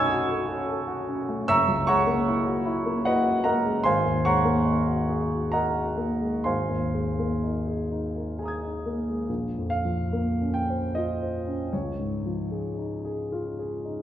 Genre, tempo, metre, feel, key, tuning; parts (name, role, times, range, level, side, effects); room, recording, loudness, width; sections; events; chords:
classical, impressionist solo piano; 61-77 BPM; 3/4; rubato; Bb minor from 3.8 s; A4 = 440 Hz
warm grand piano; solo; 0.0-14.0 s; F#1 to G#6; -24 LUFS; equal
wet recital hall reverb, RT60 1.5 s; heard from further back in the room; -24 LUFS; side -11 dB against mid
0.0-9.3 A section; 9.3-14.0 B section
0.0 B9; 1.5 F#9; 3.8 Ab9sus4; 6.5 Abadd9; 9.3 Bbmadd9; 11.7 Dbadd9